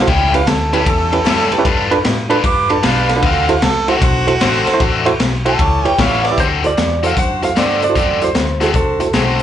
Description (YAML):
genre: electric blues shuffle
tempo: 152 BPM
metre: 4/4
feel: swing 66% on 8ths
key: D mixolydian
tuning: A4 = 445 Hz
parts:
  - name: clear harmonica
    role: second line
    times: 0.0-6.4 s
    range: F#4 to D6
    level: -18 LUFS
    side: right 3 dB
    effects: overdrive, slapback echo
  - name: barky reed electric piano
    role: accompaniment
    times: 0.0-9.4 s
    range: C#4 to E5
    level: -18 LUFS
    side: right 4 dB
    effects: overdrive, fast tremolo, slapback echo
  - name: clear saxophone section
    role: stabs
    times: 0.0-9.4 s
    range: C#4 to C#5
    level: -22 LUFS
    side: left 2 dB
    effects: slapback echo
  - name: vintage muted fingered electric bass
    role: bass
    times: 0.0-9.4 s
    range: A1 to A2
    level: -21 LUFS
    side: left 1 dB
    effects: none
  - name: overdriven electric guitar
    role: riff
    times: 0.1-9.4 s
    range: A2 to B4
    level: -19 LUFS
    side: left 6 dB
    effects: slapback echo
  - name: raw garage drum kit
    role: drums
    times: 0.1-9.4 s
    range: hi-hat, kick drum, ride cymbal, snare drum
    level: -18 LUFS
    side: left 1 dB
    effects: none
  - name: clean lap steel guitar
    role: melody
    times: 6.4-9.2 s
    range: G#4 to F#5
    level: -18 LUFS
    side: right 2 dB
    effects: slapback echo
room: light reverb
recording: live gig heard through the venue's PA, club reverb, nothing above 10.3 kHz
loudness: -12 LUFS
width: side -10 dB against mid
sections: 0.0-6.4 A section; 6.4-9.4 B section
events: harmonica solo 0.0-6.4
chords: 0.1 A7; 1.7 G7; 3.2 D7; 5.6 A7; 6.4 D7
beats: | 0.08 0.47 0.87 1.26 | 1.66 2.05 2.44 2.84 | 3.23 3.62 4.02 4.41 | 4.80 5.20 5.59 5.99 | 6.38 6.77 7.17 7.56 | 7.96 8.35 8.75 9.14